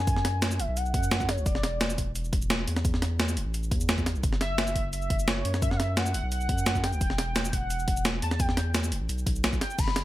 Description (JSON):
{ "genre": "liquid drum and bass", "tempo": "173 BPM", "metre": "4/4", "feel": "straight", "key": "unclear", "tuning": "A4 = 442 Hz", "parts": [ { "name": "warm velvety synth lead", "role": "melody", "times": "0.0-2.1, 4.4-10.0 s", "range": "C#5 to B5", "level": "-33 LUFS", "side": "equal", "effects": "chorus, cassette tape, digital delay" }, { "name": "saturated sub bass", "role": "bass", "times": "0.0-10.0 s", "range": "E1 to F#2", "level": "-30 LUFS", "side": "equal", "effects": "none" }, { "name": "breakbeat sampler-style drum kit", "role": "drums", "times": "0.1-10.0 s", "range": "crash cymbal, hi-hat, shaker, snare drum", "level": "-29 LUFS", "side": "equal", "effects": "none" }, { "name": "electronic kick drum", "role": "drums", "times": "0.1-9.9 s", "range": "none", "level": "-29 LUFS", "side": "equal", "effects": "none" }, { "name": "lush unison pad", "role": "sustained chords", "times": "9.8-10.0 s", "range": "none", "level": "barely audible", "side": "none", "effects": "none" } ], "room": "digital ambience", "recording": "none", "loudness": "-25 LUFS", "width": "side -15 dB against mid", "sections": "0.0-10.0 A section", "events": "none", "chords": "0.0 F#sus2; 1.5 E5; 4.2 F#5; 7.0 Em" }